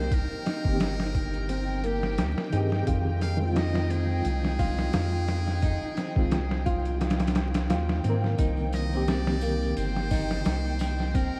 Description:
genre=trip hop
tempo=87 BPM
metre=4/4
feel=swing 55% on 16ths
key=C minor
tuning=A4 = 440 Hz
part: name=trumpet with metal mute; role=melody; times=0.0-11.4 s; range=G4 to F5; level=-42 LUFS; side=equal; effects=vintage 12-bit sampler grit, tape echo
part: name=reed electric piano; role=accompaniment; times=0.0-11.4 s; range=Eb3 to Bb4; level=-36 LUFS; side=equal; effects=fast tremolo, tape echo
part: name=rich studio string section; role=sustained chords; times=0.0-11.4 s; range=G5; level=-42 LUFS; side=equal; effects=none
part: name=nylon-string guitar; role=arpeggios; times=0.0-11.4 s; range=Bb3 to F4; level=-36 LUFS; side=equal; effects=tape echo
part: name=soft dub sub bass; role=bass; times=0.0-11.3 s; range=G1 to Ab2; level=-31 LUFS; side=equal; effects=tube saturation
part: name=flickering grainy texture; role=texture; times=0.0-11.4 s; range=Eb4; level=-44 LUFS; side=equal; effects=none
part: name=trip hop sampler-style drum kit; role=drums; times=0.1-11.3 s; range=hi-hat, kick drum, snare drum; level=-32 LUFS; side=equal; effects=none
part: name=tambourine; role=percussion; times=8.4-11.4 s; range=none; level=-52 LUFS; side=equal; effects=none
room=moderate huge ambient reverb, RT60 7.8 s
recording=dreamy mix soaked in reverb, vinyl crackle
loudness=-27 LUFS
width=mono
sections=0.0-11.4 A section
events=none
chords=0.0 Cm7; 2.9 Fm7; 8.4 Cm7

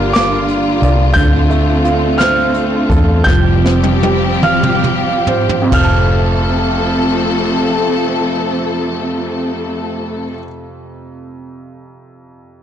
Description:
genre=six-eight pop ballad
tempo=44-59 BPM (dotted quarters)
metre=6/8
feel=straight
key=F major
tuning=A4 = 438 Hz
part: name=clear concert grand piano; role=melody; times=0.0-10.4 s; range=D6 to G6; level=-20 LUFS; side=equal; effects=none
part: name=clear upright piano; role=accompaniment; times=0.0-12.6 s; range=F2 to A5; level=-19 LUFS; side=right 5 dB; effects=none
part: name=warm studio string section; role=sustained chords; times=0.0-10.4 s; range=D3 to A4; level=-17 LUFS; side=left 2 dB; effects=none
part: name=vintage muted fingered electric bass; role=bass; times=0.0-10.4 s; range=F1 to E2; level=-16 LUFS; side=equal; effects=none
part: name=jazz brush drum kit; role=drums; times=0.1-5.9 s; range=crash cymbal, hi-hat, kick drum, snare drum, toms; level=-17 LUFS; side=left 1 dB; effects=soft clipping on snare
room=light reverb, small room ambience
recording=blown-out, overdriven recording, overdrive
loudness=-11 LUFS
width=side -10 dB against mid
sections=0.0-5.7 A section; 5.7-11.2 B section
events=slowing down 1.2-5.7; drum fill 3.3-5.7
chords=0.0 Gm7; 1.2 Dm7; 3.3 Fsus2; 5.7 F

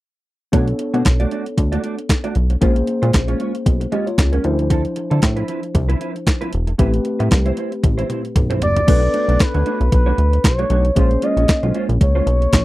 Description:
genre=early-eighties boogie funk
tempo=115 BPM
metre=4/4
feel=swing 56% on 16ths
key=unclear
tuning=A4 = 440 Hz
part: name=mellow tine electric piano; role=accompaniment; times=0.5-12.6 s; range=F3 to D#5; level=-24 LUFS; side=left 2 dB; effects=lush chorus
part: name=mellow electric guitar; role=riff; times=0.5-12.6 s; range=F3 to D5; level=-25 LUFS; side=right 4 dB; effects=ensemble chorus
part: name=chorused synth bass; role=bass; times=0.5-12.6 s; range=E1 to D3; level=-17 LUFS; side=equal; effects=none
part: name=crisp 8-bit digital drum machine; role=drums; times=0.5-12.6 s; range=crash cymbal, handclaps, hi-hat, kick drum, snare drum, toms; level=-16 LUFS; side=equal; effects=overdrive
part: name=expressive synth lead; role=melody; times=8.6-12.6 s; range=B4 to D#5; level=-20 LUFS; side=equal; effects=chorus, slapback echo
room=little or no reverb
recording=dry, close 1970s-style studio recording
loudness=-15 LUFS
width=side -17 dB against mid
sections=0.5-8.9 A section; 8.9-12.6 B section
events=drum fill 7.8-8.9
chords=0.5 Bm9; 2.6 A#m9; 4.4 Dm9; 6.8 Am9; 8.9 Bm9; 11.0 A#m9

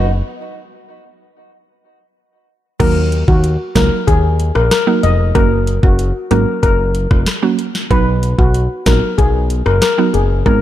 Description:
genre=dancehall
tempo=94 BPM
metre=4/4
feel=straight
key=Eb minor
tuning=A4 = 440 Hz
part: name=fat analog bass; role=bass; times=0.0-10.6 s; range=F1 to Eb2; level=-15 LUFS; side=equal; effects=none
part: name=steel pan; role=melody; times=2.8-10.6 s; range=Gb4 to Eb5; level=-17 LUFS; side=left 4 dB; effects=tape echo
part: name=mallet-like synth pluck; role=accompaniment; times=2.8-10.6 s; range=Gb3 to Ab4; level=-19 LUFS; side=right 7 dB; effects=chorus
part: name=afro-pop drum kit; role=drums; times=2.8-10.6 s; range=crash cymbal, hi-hat, kick drum, rim click, snare drum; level=-16 LUFS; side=equal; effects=none
room=little or no reverb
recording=dark, warm production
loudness=-12 LUFS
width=side -12 dB against mid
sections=0.0-2.8 A section; 2.8-10.6 B section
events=break 0.2-2.8; hi-hats muted 10.5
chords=0.2 N.C.; 2.8 Ebm; 5.4 Gb; 7.9 B

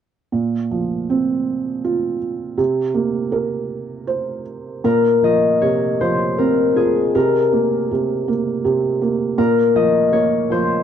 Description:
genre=children's music, lullaby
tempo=80 BPM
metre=3/4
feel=rubato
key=Bb minor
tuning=A4 = 440 Hz
part: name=felt-muted upright piano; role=accompaniment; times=0.3-10.8 s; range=Bb2 to C5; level=-19 LUFS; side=right 5 dB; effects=none
part: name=concert harp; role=melody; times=4.8-10.8 s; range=Ab4 to Eb5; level=-17 LUFS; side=left 6 dB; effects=none
room=moderate booth ambience, RT60 0.2 s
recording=dry, close 1970s-style studio recording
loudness=-16 LUFS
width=side -9 dB against mid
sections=0.3-4.8 A section; 4.8-10.8 B section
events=none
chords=0.3 Bbsus2; 2.6 Bbsus2/C; 4.8 Bbsus2; 7.1 Bbsus2/C; 9.4 Bbm

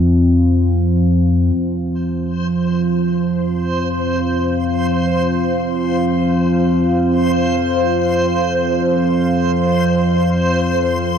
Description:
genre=dark ambient drone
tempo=free time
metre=none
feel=none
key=unclear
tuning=A4 = 439 Hz
part: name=deep dark ambient pad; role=sustained chords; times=0.0-11.2 s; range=F3 to F5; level=-17 LUFS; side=equal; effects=chorus, built-in reverb
part: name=analog drone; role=drone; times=0.0-11.2 s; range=F2 to F3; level=-18 LUFS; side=left 1 dB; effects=chorus
part: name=backwards swelling texture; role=texture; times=2.3-11.2 s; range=C5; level=-22 LUFS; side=right 1 dB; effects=built-in reverb
room=moderate plate reverb, RT60 2.5 s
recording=dreamy mix soaked in reverb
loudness=-14 LUFS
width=side -8 dB against mid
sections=0.0-1.6 A section; 1.6-11.2 B section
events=fade-in on synth drone 1.6-11.2; fade-out on ambient pad 1.6-11.2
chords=0.0 F5

